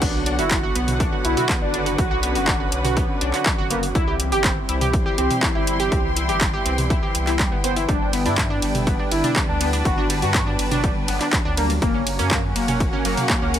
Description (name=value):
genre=melodic techno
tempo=122 BPM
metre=4/4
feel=straight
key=B harmonic minor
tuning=A4 = 440 Hz
part: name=wide unison lead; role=melody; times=0.0-13.6 s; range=A#3 to G4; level=-27 LUFS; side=left 1 dB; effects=lush chorus, sidechain pumping, tape echo
part: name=warm analog pad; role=sustained chords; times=0.0-13.6 s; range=C#3 to C#4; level=-30 LUFS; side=left 1 dB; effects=lush chorus, sidechain pumping
part: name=analog pluck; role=arpeggios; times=0.0-13.5 s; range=F#3 to C5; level=-26 LUFS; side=right 2 dB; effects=chorus, cassette tape, sidechain pumping, dub echo
part: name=round analog bass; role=bass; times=0.0-13.6 s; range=F#1 to G2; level=-26 LUFS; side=equal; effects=sidechain pumping
part: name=electronic kick drum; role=drums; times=0.0-13.4 s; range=none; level=-23 LUFS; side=equal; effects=overdrive
part: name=techno drum kit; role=drums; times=0.0-13.6 s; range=crash cymbal, handclaps, hi-hat, ride cymbal, toms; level=-25 LUFS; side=equal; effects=overdrive
part: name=clear studio string section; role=texture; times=0.0-13.6 s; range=D3 to C6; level=-29 LUFS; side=equal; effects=sidechain pumping
room=digital ambience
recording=none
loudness=-18 LUFS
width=side -10 dB against mid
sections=0.0-13.6 A section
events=none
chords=0.0 Bm; 4.0 C; 7.9 G; 11.8 F#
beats=| 0.02 0.51 1.00 1.49 | 1.98 2.48 2.97 3.46 | 3.95 4.44 4.93 5.43 | 5.92 6.41 6.90 7.39 | 7.89 8.38 8.87 9.36 | 9.85 10.35 10.84 11.33 | 11.82 12.31 12.80 13.30